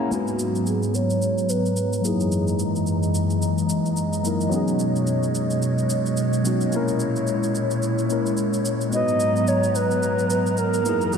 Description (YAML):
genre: amapiano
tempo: 109 BPM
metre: 4/4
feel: swing 58% on 16ths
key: G# minor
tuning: A4 = 440 Hz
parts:
  - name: mellow tine electric piano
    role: accompaniment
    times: 0.0-11.2 s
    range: F#3 to A#5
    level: -26 LUFS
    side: left 3 dB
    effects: low-pass filter
  - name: airy breathy pad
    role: sustained chords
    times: 0.0-11.2 s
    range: F#2 to A#5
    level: -22 LUFS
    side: equal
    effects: chorus, low-pass filter
  - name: alto flute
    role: melody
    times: 0.1-2.6, 8.9-11.2 s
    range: F#4 to D#5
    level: -25 LUFS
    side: right 1 dB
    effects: low-pass filter, diffuse ambient delay
  - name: shaker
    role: drums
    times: 0.1-11.2 s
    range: none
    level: -34 LUFS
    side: right 2 dB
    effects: none
room: wet cathedral reverb, RT60 4.6 s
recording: dreamy mix soaked in reverb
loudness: -20 LUFS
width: side -6 dB against mid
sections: 0.1-11.2 A section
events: filter sweep 0.1-11.2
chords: 0.1 G#m9; 2.0 F#13; 4.5 B69; 6.7 A#m7b5; 8.9 G#m9